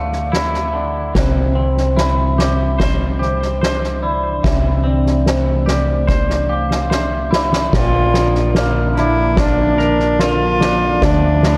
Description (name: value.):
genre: post-rock.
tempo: 73 BPM.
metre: 4/4.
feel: straight.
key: unclear.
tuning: A4 = 444 Hz.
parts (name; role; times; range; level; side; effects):
twangy electric guitar; arpeggios; 0.0-11.6 s; D2 to C5; -25 LUFS; equal; vibrato effect, tape echo.
vibraphone with soft mallets; arpeggios; 0.0-11.6 s; Bb4 to F6; -26 LUFS; equal; tape echo.
fingered electric bass; bass; 0.0-11.6 s; Bb1 to D2; -21 LUFS; equal; none.
soft-mallet drum kit; drums; 0.1-11.6 s; crash cymbal, kick drum, snare drum; -22 LUFS; equal; none.
dark analog pad; sustained chords; 1.1-11.6 s; C3 to D4; -28 LUFS; equal; chorus.
warm cello; melody; 7.7-11.6 s; D4 to F4; -19 LUFS; equal; tape echo.
room: light reverb, small room ambience.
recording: none.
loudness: -16 LUFS.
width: mono.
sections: 0.0-7.7 A section; 7.7-11.6 B section.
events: drum fill 6.1-7.7.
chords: 0.0 Dmadd9; 1.2 Cadd9; 7.7 Bb; 11.0 Dmadd9.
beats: 0.33 | 1.16 1.98 2.80 3.62 | 4.45 5.27 6.09 6.92 | 7.74 8.56 9.38 10.21 | 11.03.